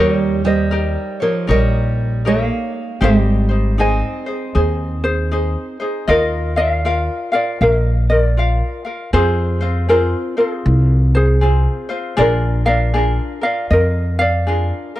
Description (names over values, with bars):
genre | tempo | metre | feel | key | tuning
Hawaiian | 79 BPM | 4/4 | swing 63% on 8ths | Ab major | A4 = 439 Hz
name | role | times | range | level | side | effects
ukulele | melody | 0.0-15.0 s | F4 to Ab5 | -19 LUFS | equal | slapback echo
fingerpicked steel-string acoustic guitar | second line | 0.0-5.8 s | F3 to C4 | -21 LUFS | right 4 dB | slapback echo
ukulele | accompaniment | 0.0-15.0 s | C4 to F5 | -22 LUFS | left 2 dB | none
upright bass | bass | 0.0-14.7 s | Ab1 to F2 | -16 LUFS | equal | none
room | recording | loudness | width
small room reverb | dry, close 1970s-style studio recording | -14 LUFS | side -15 dB against mid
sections
0.0-6.1 A section; 6.1-15.0 B section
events
none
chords
0.0 Eb7; 3.0 Abmaj7; 6.1 Ebsus2; 9.1 Fm; 12.2 Bb7